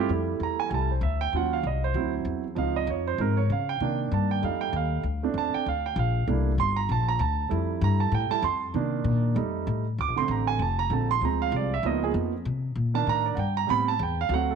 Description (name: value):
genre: jazz, big band swing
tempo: 194 BPM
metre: 4/4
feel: swing 60% on 8ths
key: F major, Bb major from 10.0 s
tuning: A4 = 441 Hz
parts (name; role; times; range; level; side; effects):
- warm concert grand piano; accompaniment; 0.0-14.6 s; D3 to D6; -26 LUFS; right 9 dB; none
- upright bass; bass; 0.0-14.6 s; F1 to Db3; -27 LUFS; left 3 dB; none
room: light reverb, studio ambience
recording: 1960s-style stereo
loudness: -24 LUFS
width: side -6 dB against mid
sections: 0.1-10.0 A section; 10.0-14.6 A section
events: grand piano solo 0.1-14.6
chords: 0.1 Fmaj7; 1.3 Ebm9; 2.0 D9; 2.6 Dbmaj7; 3.8 Cm9; 4.4 F9; 5.0 Bbmaj9; 6.3 C13; 7.5 Fmaj7; 8.8 Cm7; 9.4 F7; 10.0 Bbmaj7; 11.2 Dm7b5; 11.8 Db13; 12.5 Cm7; 13.7 Am7